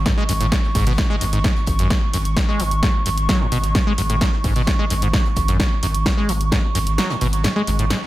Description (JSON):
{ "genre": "driving peak-time techno", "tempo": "130 BPM", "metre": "4/4", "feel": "straight", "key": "unclear", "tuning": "A4 = 440 Hz", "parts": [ { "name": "saturated sub bass", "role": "bass", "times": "0.0-7.9 s", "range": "G#1", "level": "-23 LUFS", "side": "equal", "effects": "overdrive, sidechain pumping, low-pass filter" }, { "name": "warbly tape-like pad", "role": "texture", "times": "0.0-8.1 s", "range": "C#6", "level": "-27 LUFS", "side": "right 3 dB", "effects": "chorus, built-in reverb, sidechain pumping" }, { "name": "acid bass, saw", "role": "riff", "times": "0.1-7.9 s", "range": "F#2 to G#3", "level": "-23 LUFS", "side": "equal", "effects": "analog chorus, sidechain pumping, diffuse ambient delay" }, { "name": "damped 70s drum kit", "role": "drums", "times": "0.1-8.1 s", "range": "hi-hat, snare drum", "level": "-38 LUFS", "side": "left 4 dB", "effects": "none" }, { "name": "electronic kick drum", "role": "drums", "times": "0.1-6.6 s", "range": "none", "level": "-20 LUFS", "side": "equal", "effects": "studio reverb" }, { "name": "punchy analog drum machine", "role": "drums", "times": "0.1-8.0 s", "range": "hi-hat, snare drum", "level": "-24 LUFS", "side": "equal", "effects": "studio reverb" } ], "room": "light reverb, studio reverb", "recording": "none", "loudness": "-16 LUFS", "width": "side -16 dB against mid", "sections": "0.0-8.1 A section", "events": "kick drops out 7.0-8.1", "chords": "none", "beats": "0.06 0.52 0.98 | 1.44 1.91 2.37 2.83 | 3.29 3.75 4.21 4.67 | 5.14 5.60 6.06 6.52 | 6.98 7.44 7.91" }